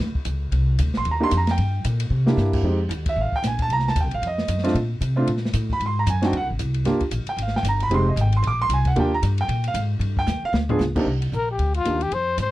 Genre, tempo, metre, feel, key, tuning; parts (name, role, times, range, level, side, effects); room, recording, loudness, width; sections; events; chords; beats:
jazz, small-group swing and bop; 228 BPM; 4/4; swing 58% on 8ths; C minor; A4 = 440 Hz
upright bass; bass; 0.0-12.5 s; F1 to C3; -22 LUFS; equal
open jazz drum kit; drums; 0.0-12.4 s; crash cymbal, hi-hat, kick drum, ride cymbal, snare drum, toms; -29 LUFS; equal
warm concert grand piano; accompaniment; 1.0-12.0 s; C3 to D6; -23 LUFS; right 2 dB
breathy trumpet; melody; 11.4-12.5 s; F4 to C5; -23 LUFS; left 4 dB
little or no reverb; dry, close 1970s-style studio recording; -20 LUFS; side -16 dB against mid
0.0-2.6 A section; 2.6-11.1 A section; 11.1-12.5 B section
drum fill 2.1, 10.3-10.8
0.0 N.C.; 0.5 Cm9; 1.6 Gm; 2.1 C7; 2.6 Fm7; 3.7 Cm7; 4.2 F7b9; 4.8 Bbmaj7(no3); 5.8 Ab7#11; 6.9 Gm7; 7.9 Fm9; 8.4 Bbsus2; 9.0 Ebmaj7; 10.0 G7(no3); 11.1 Cm9
0.00 0.27 | 0.53 0.79 1.06 1.32 | 1.58 1.85 2.11 2.38 | 2.64 2.90 3.17 3.43 | 3.69 3.96 4.22 4.49 | 4.75 5.01 5.28 5.54 | 5.80 6.07 6.33 6.59 | 6.86 7.12 7.38 7.65 | 7.91 8.17 8.44 8.70 | 8.96 9.22 9.49 9.75 | 10.01 10.28 10.54 10.80 | 11.06 11.33 11.59 11.86 | 12.12 12.38